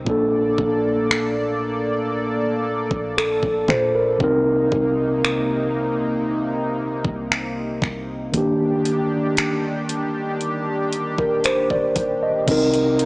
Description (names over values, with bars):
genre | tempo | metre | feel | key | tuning
contemporary R&B | 58 BPM | 4/4 | straight | C dorian | A4 = 439 Hz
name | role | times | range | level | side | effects
mellow tine electric piano | accompaniment | 0.0-13.1 s | Bb2 to Eb5 | -20 LUFS | equal | fast stereo tremolo
chorused pulse-width pad | sustained chords | 0.0-13.1 s | C3 to D5 | -26 LUFS | equal | none
clean 808-style bass | bass | 0.0-13.1 s | Eb1 to Bb2 | -32 LUFS | equal | none
smooth R&B drum kit | drums | 0.1-13.1 s | crash cymbal, finger snaps, hi-hat, kick drum | -24 LUFS | equal | none
mallet-like synth pluck | texture | 12.5-13.1 s | Eb5 | -34 LUFS | right 1 dB | none
room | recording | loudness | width
light reverb, digital ambience | dry, gritty hardware recording, cassette tape, small speaker sound | -18 LUFS | side -26 dB against mid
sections
0.0-12.5 A section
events
none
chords
0.1 Bbmaj7; 4.2 Cm7; 8.3 Ebmaj7; 12.5 Cm7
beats
| 0.06 1.10 2.13 3.17 | 4.20 5.24 6.27 7.30 | 8.34 9.37 10.41 11.44 | 12.48